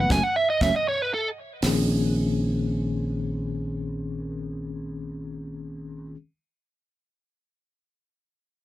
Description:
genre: electric jazz fusion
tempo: 78 BPM (dotted quarters)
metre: 6/8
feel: straight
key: Bb minor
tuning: A4 = 440 Hz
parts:
  - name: biting lead guitar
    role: melody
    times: 0.0-1.3 s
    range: A4 to Ab5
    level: -24 LUFS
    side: right 2 dB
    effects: overdrive
  - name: bell-like tine electric piano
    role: accompaniment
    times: 0.0-6.2 s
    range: Eb3 to Cb5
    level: -28 LUFS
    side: left 2 dB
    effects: medium stereo tremolo
  - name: sustaining fretless electric bass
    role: bass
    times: 0.0-6.1 s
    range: Gb1 to Bb1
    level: -28 LUFS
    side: equal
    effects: none
  - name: crisp fusion drum kit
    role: drums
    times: 0.1-1.7 s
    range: hi-hat, kick drum, snare drum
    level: -29 LUFS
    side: equal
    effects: none
room: little or no reverb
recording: none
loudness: -23 LUFS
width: side -14 dB against mid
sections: 0.0-1.6 A section; 1.6-4.7 B section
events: lead electric guitar solo 0.0-1.6; band accent 0.1-1.6; drum fill 1.4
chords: 0.0 Gbmadd11; 1.6 Bbm11

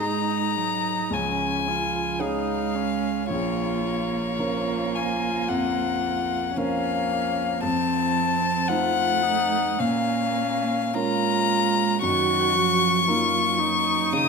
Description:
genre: classical, slow romantic movement for piano quartet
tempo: 55 BPM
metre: 4/4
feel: rubato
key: unclear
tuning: A4 = 440 Hz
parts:
  - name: rich violin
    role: melody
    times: 0.0-14.3 s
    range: Db5 to Eb6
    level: -24 LUFS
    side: left 6 dB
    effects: none
  - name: dark cello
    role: second line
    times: 0.0-14.3 s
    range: Eb3 to Bb3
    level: -29 LUFS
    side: right 10 dB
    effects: none
  - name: dark baby grand piano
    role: accompaniment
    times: 0.0-14.3 s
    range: Bb1 to C5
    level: -29 LUFS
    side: equal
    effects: none
  - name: dark viola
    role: accompaniment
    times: 0.0-14.3 s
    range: C4 to Gb4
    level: -30 LUFS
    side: right 4 dB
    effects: none
room: moderate recital hall reverb, RT60 1.3 s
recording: minimal, uncompressed stereo recording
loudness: -21 LUFS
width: side -4 dB against mid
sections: 0.0-14.3 A section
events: none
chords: 0.0 Ab7(no3); 1.1 Db; 3.3 Bbm; 7.6 F7; 9.8 Bbm7; 12.0 Ebm7/Gb

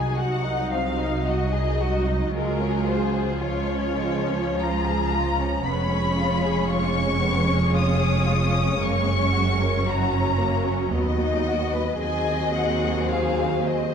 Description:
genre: classical, slow romantic movement for string orchestra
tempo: 56 BPM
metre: 3/4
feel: rubato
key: Db major, F# major from 5.6 s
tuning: A4 = 440 Hz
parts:
  - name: rich studio violin section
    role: melody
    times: 0.0-13.9 s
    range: Bb4 to D#6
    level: -28 LUFS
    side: left 4 dB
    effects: none
  - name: rich studio violin section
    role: second line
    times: 0.0-13.9 s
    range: Ab3 to D#5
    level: -28 LUFS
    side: left 3 dB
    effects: none
  - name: rich studio viola section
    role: accompaniment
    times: 0.0-13.9 s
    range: F3 to F4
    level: -28 LUFS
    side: right 2 dB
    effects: none
  - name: rich studio double bass section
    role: bass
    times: 0.0-13.9 s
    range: E#1 to D#2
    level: -27 LUFS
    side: right 2 dB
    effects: none
  - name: warm studio cello section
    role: bass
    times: 0.0-13.9 s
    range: C2 to F#2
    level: -27 LUFS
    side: right 3 dB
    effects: none
room: moderate scoring stage reverb, RT60 1.4 s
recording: dark, warm production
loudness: -21 LUFS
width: side -7 dB against mid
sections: 0.0-13.9 A section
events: none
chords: 0.0 Ab7/C; 2.3 Db; 5.6 C#7/E#; 8.8 F#; 10.9 B/D#; 12.0 G#7/D#

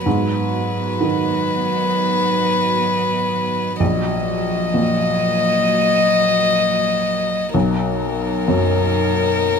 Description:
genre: neoclassical piano and strings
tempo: 64 BPM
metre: 4/4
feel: rubato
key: unclear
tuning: A4 = 439 Hz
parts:
  - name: felt-muted upright piano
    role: accompaniment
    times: 0.0-9.6 s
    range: A#1 to D#3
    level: -21 LUFS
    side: right 1 dB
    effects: none
  - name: soft additive organ-like pad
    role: sustained chords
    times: 0.0-9.6 s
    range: A#3 to D#5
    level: -31 LUFS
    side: right 6 dB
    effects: ensemble chorus, built-in reverb
  - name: warm violin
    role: melody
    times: 0.1-9.6 s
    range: A#4 to D#5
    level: -19 LUFS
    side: left 5 dB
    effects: none
  - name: warm cello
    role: second line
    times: 0.1-9.6 s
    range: D#3 to F#3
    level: -25 LUFS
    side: right 8 dB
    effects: none
room: little or no reverb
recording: minimal, uncompressed stereo recording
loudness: -16 LUFS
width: side -6 dB against mid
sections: 0.0-9.6 A section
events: none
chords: 0.1 G#m7; 3.8 D#m/A#; 7.5 Bmaj7

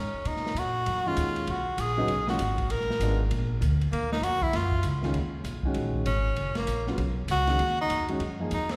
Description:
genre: jazz, small-group swing and bop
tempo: 196 BPM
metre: 4/4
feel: swing 62% on 8ths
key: Eb minor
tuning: A4 = 439 Hz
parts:
  - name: bright tenor saxophone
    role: melody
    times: 0.0-8.8 s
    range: Bb3 to Bb4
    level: -32 LUFS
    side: equal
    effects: none
  - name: upright bass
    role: bass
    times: 0.0-8.8 s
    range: Gb1 to B2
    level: -32 LUFS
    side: equal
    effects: none
  - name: open jazz drum kit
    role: drums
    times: 0.3-8.8 s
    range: hi-hat, kick drum, ride cymbal, snare drum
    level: -38 LUFS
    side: equal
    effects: none
  - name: warm grand piano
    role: accompaniment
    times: 1.1-8.5 s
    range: Db3 to Ab4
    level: -36 LUFS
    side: equal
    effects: none
room: wet church reverb, RT60 2.9 s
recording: recorded in a church or concert hall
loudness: -28 LUFS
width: mono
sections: 0.0-5.2 A section; 5.2-8.8 A section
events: tenor saxophone solo 0.0-8.8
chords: 0.3 Bmaj7; 2.7 Bb7b9; 3.9 Ebm7

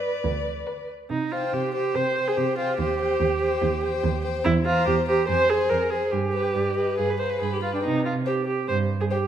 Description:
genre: quick classical-period movement for string quartet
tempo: 142 BPM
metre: 4/4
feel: straight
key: C minor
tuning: A4 = 440 Hz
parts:
  - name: rich violin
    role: melody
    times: 0.0-9.2 s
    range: D5 to B5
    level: -35 LUFS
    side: left 7 dB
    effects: none
  - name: dark violin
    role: second line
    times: 0.0-9.2 s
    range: B4 to C5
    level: -28 LUFS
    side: left 4 dB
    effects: none
  - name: rich viola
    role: accompaniment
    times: 0.0-9.3 s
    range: D4 to C5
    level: -24 LUFS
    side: right 3 dB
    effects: none
  - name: warm cello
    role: bass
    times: 0.2-9.0 s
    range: D2 to C3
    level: -28 LUFS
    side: right 4 dB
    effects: none
room: wet recital hall reverb, RT60 1.4 s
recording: none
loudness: -22 LUFS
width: side -10 dB against mid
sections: 0.0-1.1 A section; 1.1-9.3 B section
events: none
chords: 0.0 G (rootless); 1.1 C5; 2.8 Cm/Eb; 4.5 C7/E; 5.3 Fm; 6.1 G; 7.8 C5

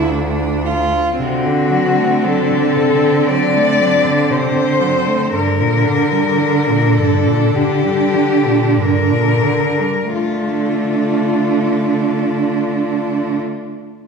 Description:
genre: classical, lyrical piece for cello ensemble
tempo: 42-61 BPM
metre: 4/4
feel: rubato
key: D minor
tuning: A4 = 439 Hz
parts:
  - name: clear cello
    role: melody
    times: 0.0-13.4 s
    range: F4 to D5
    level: -18 LUFS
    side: left 6 dB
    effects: none
  - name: clear cello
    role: second line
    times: 0.0-13.4 s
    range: C4 to F4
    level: -20 LUFS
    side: right 8 dB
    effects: none
  - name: clear cello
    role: accompaniment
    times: 0.0-13.4 s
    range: G2 to A3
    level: -19 LUFS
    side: left 1 dB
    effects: none
  - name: rich cello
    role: bass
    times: 0.0-13.4 s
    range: D2 to D3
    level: -20 LUFS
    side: right 2 dB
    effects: none
room: wet scoring stage reverb, RT60 1.7 s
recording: heard from further back in the room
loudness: -13 LUFS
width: side -5 dB against mid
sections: 0.0-1.2 A section; 1.2-10.1 B section; 10.1-14.1 C section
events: slowing down 0.0-10.1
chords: 0.0 Dm; 1.2 D7/C; 5.3 Gm; 10.1 Dm

